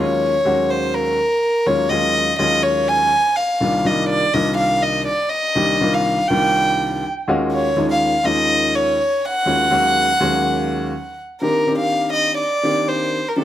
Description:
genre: jazz.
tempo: 123 BPM.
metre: 4/4.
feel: swing 56% on 16ths.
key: unclear.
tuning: A4 = 441 Hz.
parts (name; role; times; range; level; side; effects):
warm violin; melody; 0.0-13.4 s; A4 to Ab5; -17 LUFS; equal; none.
clear baby grand piano; accompaniment; 0.0-13.4 s; C2 to G5; -20 LUFS; equal; none.
room: moderate studio reverb, RT60 0.7 s.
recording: none.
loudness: -16 LUFS.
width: side -12 dB against mid.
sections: 0.0-11.4 A section; 11.4-13.4 B section.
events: grand piano fill 6.8-7.5.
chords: 0.0 Ebm11; 3.6 Cm11; 7.3 Ebm11; 11.4 Cm9.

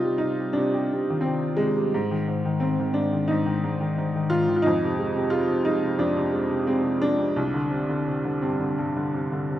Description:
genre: classical, lyrical solo piano.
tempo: 87 BPM.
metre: 4/4.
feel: rubato.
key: C minor.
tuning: A4 = 440 Hz.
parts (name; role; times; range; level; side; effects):
clear upright piano; solo; 0.0-9.6 s; C2 to G4; -22 LUFS; equal; none.
room: moderate concert hall reverb, RT60 2.0 s.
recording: none.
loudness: -22 LUFS.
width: side -12 dB against mid.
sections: 0.0-9.6 A section.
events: none.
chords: 0.0 Cm; 1.9 Ab5; 4.6 Fm; 7.4 Csus2.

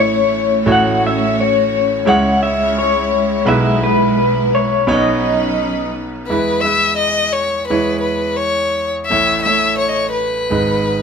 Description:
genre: acoustic folk-pop ballad.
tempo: 86 BPM.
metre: 4/4.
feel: straight.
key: E major.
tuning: A4 = 440 Hz.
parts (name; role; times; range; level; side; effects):
electric guitar through a small old amp; melody; 0.0-5.9 s; B4 to F#5; -15 LUFS; left 3 dB; tremolo.
clear concert grand piano; accompaniment; 0.0-11.0 s; G#1 to C#5; -19 LUFS; right 2 dB; none.
warm studio string section; sustained chords; 0.0-6.3 s; B2 to C#5; -20 LUFS; right 2 dB; none.
rich violin; second line; 6.3-11.0 s; B4 to E5; -15 LUFS; left 3 dB; none.
room: moderate studio reverb, RT60 0.7 s.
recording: none.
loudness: -13 LUFS.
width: side -6 dB against mid.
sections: 0.0-6.3 A section; 6.3-11.0 B section.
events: violin solo 6.3-11.0.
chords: 0.0 A; 0.7 F#m/A; 2.1 C#m; 3.5 E/B; 4.9 Badd9; 6.3 E; 7.7 C#m/E; 9.1 A; 10.5 G#m.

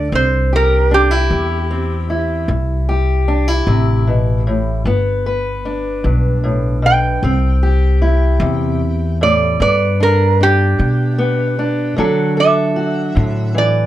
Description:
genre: acoustic country blues, solo or duo.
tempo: 51 BPM (dotted quarters).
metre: 12/8.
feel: straight.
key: G major.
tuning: A4 = 440 Hz.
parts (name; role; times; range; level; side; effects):
metal-body resonator slide guitar; melody; 0.0-13.9 s; G4 to G5; -16 LUFS; right 3 dB; none.
fingerpicked steel-string acoustic guitar; accompaniment; 0.0-13.9 s; G2 to B4; -18 LUFS; left 1 dB; none.
upright bass; bass; 0.0-13.9 s; G1 to D3; -16 LUFS; equal; none.
room: light reverb.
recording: none.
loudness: -13 LUFS.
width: side -13 dB against mid.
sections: 0.0-13.9 A section.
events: resonator guitar played with a steel bar solo 0.0-13.9.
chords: 0.1 C; 4.9 G; 7.2 C; 9.6 G; 12.0 D.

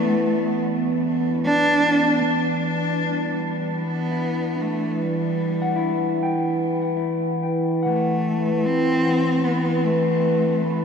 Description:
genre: ambient.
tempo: 75 BPM.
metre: 3/4.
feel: straight.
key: E minor.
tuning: A4 = 440 Hz.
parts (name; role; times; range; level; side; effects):
warm cello; melody; 0.0-10.8 s; G3 to D4; -23 LUFS; equal; ping-pong delay.
analog drone; drone; 0.0-10.8 s; E3 to B4; -22 LUFS; equal; chorus.
mellow electric guitar; arpeggios; 4.1-10.8 s; E3 to G5; -26 LUFS; left 1 dB; ping-pong delay.
room: wet huge ambient reverb, RT60 8.2 s.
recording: none.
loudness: -19 LUFS.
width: side -6 dB against mid.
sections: 0.0-2.2 A section; 2.2-10.8 B section.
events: fade-in on clean electric guitar 2.2-10.8; fade-in on cello 2.2-10.8.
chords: 0.0 E5; 2.2 Em9; 7.0 Gadd9/E.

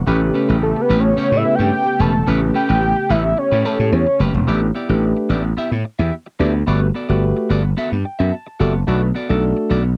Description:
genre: funk.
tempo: 109 BPM.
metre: 4/4.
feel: straight.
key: unclear.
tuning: A4 = 439 Hz.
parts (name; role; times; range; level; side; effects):
brassy analog pad; sustained chords; 0.0-4.5 s; C#3 to G4; -28 LUFS; equal; chorus.
barky tine electric piano; accompaniment; 0.1-9.8 s; A3 to A5; -23 LUFS; equal; overdrive, phaser.
semi-hollow electric guitar; riff; 0.1-9.9 s; A3 to E5; -26 LUFS; equal; subtle chorus.
gritty slap bass; bass; 0.1-9.9 s; E1 to A2; -20 LUFS; equal; overdrive.
fat analog lead; melody; 0.6-4.2 s; A4 to A5; -21 LUFS; equal; none.
room: light reverb.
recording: dry, close 1970s-style studio recording.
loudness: -18 LUFS.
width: mono.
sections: 0.0-4.5 A section; 4.5-10.0 B section.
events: analog synth lead solo 0.0-4.5; tine electric piano fill 7.8-8.9.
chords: 0.1 A9; 4.5 A9sus4; 6.7 Gmaj9; 8.9 Bm7.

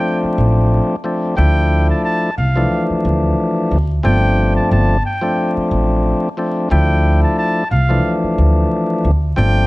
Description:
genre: hip hop, boom-bap hip-hop.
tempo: 90 BPM.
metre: 4/4.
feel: swing 56% on 16ths.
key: D minor.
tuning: A4 = 440 Hz.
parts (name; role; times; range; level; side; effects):
trumpet with straight mute; melody; 0.0-9.7 s; F5 to A5; -22 LUFS; equal; none.
percussive tonewheel organ; accompaniment; 0.0-9.7 s; E3 to E4; -17 LUFS; left 1 dB; overdrive.
upright bass; bass; 0.2-9.7 s; G1 to D2; -15 LUFS; equal; none.
room: light reverb.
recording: dark, warm production, vinyl crackle.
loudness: -13 LUFS.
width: side -20 dB against mid.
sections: 0.0-9.7 A section.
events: none.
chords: 0.0 G7sus4 (rootless); 1.4 Dmadd9; 4.0 G7sus4; 6.7 Dmadd9.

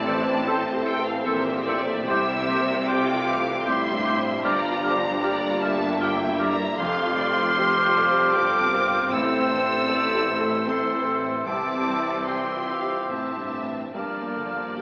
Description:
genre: cinematic.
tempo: 76 BPM.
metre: 3/4.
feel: rubato.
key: unclear.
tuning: A4 = 440 Hz.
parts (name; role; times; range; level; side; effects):
clear symphonic violin section; melody; 0.0-14.8 s; E5 to E6; -33 LUFS; equal; none.
warm symphonic violin section; second line; 0.0-14.8 s; A4 to A5; -35 LUFS; equal; none.
rich symphonic viola section; accompaniment; 0.0-14.8 s; E3 to A4; -34 LUFS; equal; none.
warm baby grand piano; accompaniment; 0.0-14.8 s; A1 to F5; -33 LUFS; equal; none.
mellow French horn section; sustained chords; 0.0-14.8 s; E3 to D4; -34 LUFS; equal; none.
concert harp; arpeggios; 0.0-14.8 s; F2 to G5; -39 LUFS; equal; none.
clear symphonic cello section; bass; 0.0-14.8 s; F2 to C3; -36 LUFS; equal; none.
clear symphonic double bass section; bass; 0.0-14.8 s; F1 to C2; -37 LUFS; equal; none.
bright clarinet; second line; 0.1-14.8 s; G4 to A4; -32 LUFS; equal; none.
bright concert flute; second line; 0.1-14.8 s; E6 to G6; -31 LUFS; equal; none.
warm oboe; second line; 0.1-14.8 s; Bb4 to D5; -34 LUFS; equal; none.
room: wet scoring stage reverb, RT60 1.9 s.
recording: AM radio sound.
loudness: -24 LUFS.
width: mono.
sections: 0.0-14.8 A section.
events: none.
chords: 0.0 Am; 2.1 C; 4.4 Gm7; 6.8 Fsus2; 9.1 Am; 11.5 C; 13.9 Gm7.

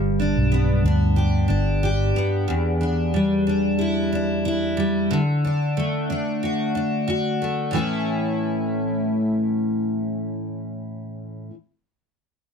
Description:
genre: pop.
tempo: 91 BPM.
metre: 4/4.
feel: swing 55% on 16ths.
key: A mixolydian.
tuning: A4 = 441 Hz.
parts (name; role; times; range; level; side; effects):
picked steel-string acoustic guitar; accompaniment; 0.0-11.5 s; E2 to G4; -21 LUFS; equal; double-tracked left and right.
vintage muted fingered electric bass; bass; 0.0-2.1 s; G1 to D2; -21 LUFS; equal; none.
room: moderate studio ambience, RT60 0.5 s.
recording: none.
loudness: -20 LUFS.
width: side -6 dB against mid.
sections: 0.0-7.7 A section; 7.7-10.4 B section.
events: none.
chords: 0.0 G; 2.5 Em7; 5.1 D; 7.7 A.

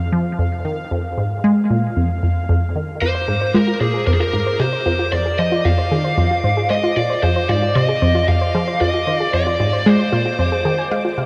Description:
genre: ambient, sequencer-driven space music.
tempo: 114 BPM.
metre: 4/4.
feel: straight.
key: F dorian.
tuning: A4 = 440 Hz.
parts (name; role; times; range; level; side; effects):
resonant blip pluck; riff; 0.0-11.3 s; F2 to Ab3; -20 LUFS; equal; phaser, tape echo.
bubbling stepped-filter texture; texture; 0.0-11.3 s; F5 to D6; -33 LUFS; equal; chorus, built-in reverb.
lead guitar through a small cranked amp; melody; 3.0-10.9 s; Ab4 to F5; -22 LUFS; equal; overdrive, tape echo.
soft round pluck; arpeggios; 3.0-11.3 s; F4 to Ab5; -26 LUFS; equal; chorus, tape echo.
room: wet huge ambient reverb, RT60 9.2 s.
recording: none.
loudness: -18 LUFS.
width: mono.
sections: 0.0-11.3 A section.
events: fade-in on synth texture 0.0-11.3.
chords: 0.0 Fm.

